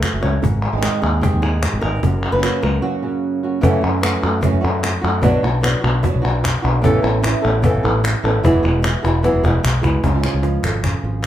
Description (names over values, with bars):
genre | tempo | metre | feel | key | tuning
flamenco | 150 BPM | 4/4 | straight | F# minor | A4 = 440 Hz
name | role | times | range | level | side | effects
flamenco guitar | melody | 0.0-11.3 s | F#2 to C#5 | -21 LUFS | equal | none
flamenco guitar | stabs | 0.0-11.3 s | B2 to G#4 | -24 LUFS | right 5 dB | none
fretless electric bass | bass | 0.0-11.3 s | E1 to F#2 | -19 LUFS | equal | none
cajon | percussion | 0.0-11.3 s | none | -21 LUFS | left 1 dB | none
palmas hand claps | percussion | 0.0-11.3 s | none | -23 LUFS | left 2 dB | none
room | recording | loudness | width
wet studio reverb, RT60 0.5 s | heard from further back in the room | -15 LUFS | side -12 dB against mid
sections
0.0-3.6 A section; 3.6-10.0 B section; 10.0-11.3 C section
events
break 2.8-3.6; drum fill 9.0-10.0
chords
0.4 G#; 2.0 F#; 3.6 F#m7; 5.2 Bm; 6.8 Aadd9; 8.4 Eadd9; 10.0 C#